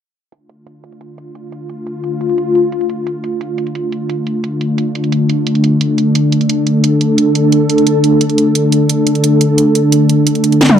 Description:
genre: dark technical drum and bass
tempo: 175 BPM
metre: 4/4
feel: straight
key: D minor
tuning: A4 = 441 Hz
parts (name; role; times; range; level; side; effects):
- sweeping resonant pad; sustained chords; 0.3-10.8 s; D3 to A4; -12 LUFS; equal; wide subtle chorus
- drum and bass drum kit; drums; 0.3-10.8 s; hi-hat, snare drum, toms; -15 LUFS; right 1 dB; overdrive, low-pass filter on hats, low-pass filter on snare, low-pass filter on toms
room: moderate lush hall reverb, RT60 1.6 s, digital ambience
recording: dark, warm production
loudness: -11 LUFS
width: side -9 dB against mid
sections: 0.3-10.8 A section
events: filter sweep on drum 0.3-10.8; drum fill 10.6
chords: 0.3 Dm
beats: | 0.32 0.67 1.01 1.35 | 1.69 2.04 2.38 2.72 | 3.07 3.41 3.75 4.09 | 4.44 4.78 5.12 5.47 | 5.81 6.15 6.49 6.84 | 7.18 7.52 7.87 8.21 | 8.55 8.89 9.24 9.58 | 9.92 10.27 10.61

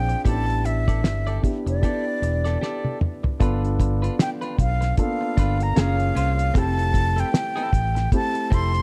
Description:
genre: lush 1970s-style soul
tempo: 76 BPM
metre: 4/4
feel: swing 58% on 16ths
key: unclear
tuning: A4 = 440 Hz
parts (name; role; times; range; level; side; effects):
- breathy concert flute; melody; 0.0-8.8 s; D5 to C6; -29 LUFS; equal; none
- dark grand piano; accompaniment; 0.0-8.8 s; A3 to A4; -31 LUFS; equal; none
- overdriven fingered electric bass; bass; 0.0-8.8 s; E1 to C2; -25 LUFS; equal; none
- clean electric guitar; riff; 0.1-8.8 s; C4 to D5; -37 LUFS; equal; none
- cloth-damped thuddy drum kit; drums; 0.1-8.8 s; hi-hat, kick drum, snare drum, toms; -25 LUFS; equal; none
room: small room ambience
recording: dark, warm production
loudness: -22 LUFS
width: mono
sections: 0.0-3.4 A section; 3.4-8.8 B section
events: drum fill 2.6-3.4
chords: 0.3 A7sus4; 3.4 G7; 5.8 F#maj7; 6.5 Fmaj7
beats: | 0.25 1.04 1.83 2.62 | 3.40 4.19 4.98 5.76 | 6.55 7.33 8.12

